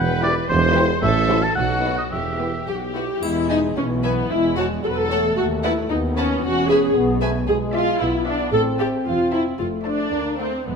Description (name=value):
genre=cinematic, playful, whimsical film cue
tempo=113 BPM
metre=2/4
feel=straight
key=E minor, E major from 3.2 s, A minor from 7.5 s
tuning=A4 = 440 Hz
part: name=rich chamber violin section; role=melody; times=0.0-10.6 s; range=F#4 to A5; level=-29 LUFS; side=left 4 dB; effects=none
part: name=clear oboe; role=second line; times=0.0-2.7 s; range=C5 to A5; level=-22 LUFS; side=right 1 dB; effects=none
part: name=clear chamber double bass section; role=bass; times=0.0-10.8 s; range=E1 to D#2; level=-28 LUFS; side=right 3 dB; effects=none
part: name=warm chamber cello section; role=bass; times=0.0-10.8 s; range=D2 to B2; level=-28 LUFS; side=right 1 dB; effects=none
part: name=warm tuba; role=bass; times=0.0-3.1 s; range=E1 to B1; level=-24 LUFS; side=right 4 dB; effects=none
part: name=clear chamber violin section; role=second line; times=0.2-10.6 s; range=F#4 to F#5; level=-32 LUFS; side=left 4 dB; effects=none
part: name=warm studio viola section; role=accompaniment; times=0.2-10.8 s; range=E3 to B4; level=-21 LUFS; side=left 1 dB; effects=none
part: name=warm French horn section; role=sustained chords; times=3.2-10.8 s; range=E3 to C#4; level=-26 LUFS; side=left 2 dB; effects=none
part: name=triangle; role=percussion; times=3.2-4.3 s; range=none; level=-40 LUFS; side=right 1 dB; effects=none
room=moderate scoring stage reverb, RT60 1.4 s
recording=minimal, uncompressed stereo recording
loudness=-18 LUFS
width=side -5 dB against mid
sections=0.0-3.2 A section; 3.2-10.8 B section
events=none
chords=0.0 Em; 1.0 F#m7b5/A; 1.6 B; 2.1 Em; 3.2 E; 4.3 F#m7/E; 5.4 B7/D#; 6.4 E; 7.5 E7/B; 8.5 Am; 9.6 Fmaj7; 10.1 Bb/D